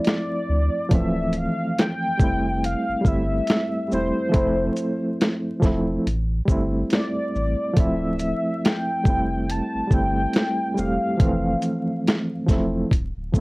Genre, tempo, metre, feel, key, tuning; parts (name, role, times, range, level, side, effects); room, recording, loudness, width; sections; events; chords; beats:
lo-fi hip hop; 70 BPM; 4/4; swing 57% on 16ths; A4 = 440 Hz
warm velvety synth lead; melody; 0.0-12.1 s; C5 to A5; -27 LUFS; left 1 dB; chorus, low-pass filter, analog delay
overdriven reed electric piano; accompaniment; 0.0-13.4 s; E3 to G4; -24 LUFS; equal; fast tremolo, cassette tape, low-pass filter
dusty soul sampler-style drum kit; drums; 0.0-13.4 s; hi-hat, kick drum, shaker, snare drum; -20 LUFS; equal
saturated sub bass; bass; 0.5-13.4 s; D1 to D2; -26 LUFS; equal; tube saturation
moderate studio reverb, RT60 0.5 s; worn, warbling old tape, cassette tape, vinyl crackle, warbly pitch drift; -20 LUFS; side -22 dB against mid
0.9-13.4 A section
break 0.0-0.9
0.0 Dm9; 2.2 Fmaj9; 4.3 Fmaj7; 6.1 Am7; 7.8 Dm9; 9.1 Fmaj9; 11.2 Fmaj7
0.06 | 0.91 1.77 2.63 3.48 | 4.34 5.20 6.05 6.91 | 7.77 8.63 9.48 10.34 | 11.20 12.05 12.91